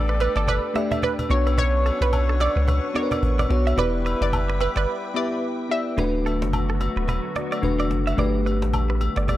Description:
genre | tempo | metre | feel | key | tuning
afrobeats | 109 BPM | 4/4 | swing 58% on 16ths | D major | A4 = 440 Hz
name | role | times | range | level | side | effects
mellow horn section | second line | 0.0-5.7 s | F#3 to D5 | -31 LUFS | left 1 dB | analog delay
bell-like FM electric piano | accompaniment | 0.0-9.4 s | A3 to E5 | -27 LUFS | left 2 dB | chorus
glassy FM pad | sustained chords | 0.0-9.4 s | D3 to D6 | -33 LUFS | left 2 dB | ensemble chorus, built-in reverb
punchy sub bass | bass | 0.0-9.4 s | D1 to C#2 | -23 LUFS | equal | none
direct-recorded clean electric guitar | riff | 0.1-9.4 s | A4 to E5 | -31 LUFS | right 5 dB | spring reverb, analog delay
analog pluck | melody | 0.2-5.8 s | A4 to E5 | -27 LUFS | right 3 dB | chorus, analog delay
cajon | drums | 0.2-9.4 s | none | -32 LUFS | equal | none
agogo bells and woodblock | percussion | 0.2-9.4 s | none | -33 LUFS | left 2 dB | none
room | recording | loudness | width
small room ambience | dry, gritty hardware recording | -20 LUFS | side -14 dB against mid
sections
0.0-6.0 A section; 6.0-9.4 B section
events
break 4.9-6.0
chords
0.0 Gadd9; 1.3 Bmadd9; 3.8 Em7; 6.0 D6; 8.2 Gadd9

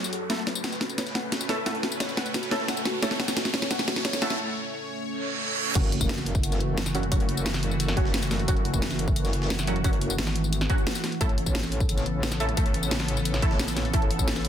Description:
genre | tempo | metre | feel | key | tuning
dark technical drum and bass | 176 BPM | 4/4 | straight | F# minor | A4 = 441 Hz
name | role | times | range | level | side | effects
sweeping resonant pad | sustained chords | 0.0-14.5 s | C#3 to C#5 | -32 LUFS | equal | chorus, sidechain pumping
soft round pluck | arpeggios | 0.0-4.3 s | F#4 to F#5 | -34 LUFS | left 2 dB | wide subtle chorus, sidechain pumping, ping-pong delay
drum and bass drum kit | drums | 0.0-14.5 s | crash cymbal, hi-hat, snare drum, tambourine | -29 LUFS | left 1 dB | studio reverb
riser, reverse cymbal and impact | sound effects | 0.0-7.1 s | none | -34 LUFS | right 2 dB | none
breakbeat sampler-style drum kit | drums | 0.1-14.5 s | hi-hat, snare drum | -39 LUFS | equal | high-pass filter on hats, studio reverb, high-pass filter on snare, high-pass filter on room
orchestra-hit-like synth stab | stabs | 0.3-14.0 s | F#3 to A4 | -32 LUFS | right 2 dB | built-in reverb, ping-pong delay
metallic wobble bass | bass | 5.8-14.5 s | F#1 to A1 | -29 LUFS | equal | chorus, overdrive, sidechain pumping
electronic kick drum | drums | 5.8-14.3 s | none | -26 LUFS | equal | studio reverb
pulsing pluck wobble bass | bass | 10.2-10.7 s | G#1 | -26 LUFS | equal | distortion, chorus
room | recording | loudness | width
light reverb | dense, heavily limited modern master | -24 LUFS | side -9 dB against mid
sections
0.0-5.8 A section; 5.8-14.5 B section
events
build-up 0.0-5.8; drum fill 0.0-4.4; riser 0.0-4.4; filter sweep on synth pluck 0.0-5.8; break 4.4-5.8; reverse cymbal 5.2-5.8; drop 5.8-14.5; impact 5.8-7.1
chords
0.3 Aadd9; 5.8 F#m7; 11.2 Aadd9

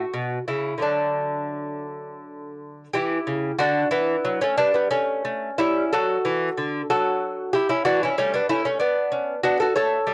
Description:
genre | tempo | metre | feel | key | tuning
classical, baroque-style dance for lute | 55-65 BPM (dotted quarters) | 6/8 | rubato | D major | A4 = 440 Hz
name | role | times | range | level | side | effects
lute | solo | 0.0-10.1 s | B2 to C#5 | -21 LUFS | equal | cassette tape
room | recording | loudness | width
light reverb | home recording on cassette | -20 LUFS | side -25 dB against mid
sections
0.0-2.9 A section; 2.9-10.1 A section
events
none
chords
0.0 A (rootless); 0.8 D; 2.9 Em; 4.9 A7; 5.9 D; 6.9 F#m7; 7.9 C#dim/E; 8.8 Bm

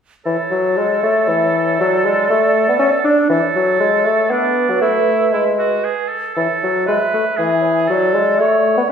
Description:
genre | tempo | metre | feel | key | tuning
quick classical-period movement for symphony orchestra | 118 BPM | 3/4 | straight | A major | A4 = 440 Hz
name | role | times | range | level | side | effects
mellow hollow concert flute | second line | 0.2-8.9 s | B4 to E5 | -21 LUFS | right 5 dB | none
clear oboe | second line | 0.3-8.9 s | D4 to C#5 | -20 LUFS | right 4 dB | none
warm bassoon | accompaniment | 0.3-8.9 s | E3 to D4 | -15 LUFS | left 2 dB | none
room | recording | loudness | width
wet recital hall reverb, RT60 1.3 s | heard from further back in the room | -13 LUFS | side -7 dB against mid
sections
0.3-8.9 A section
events
none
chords
0.3 A/E; 1.8 D5/F#; 3.3 A/E; 4.3 Bm; 4.8 E; 6.4 A/E; 7.9 D5/F#

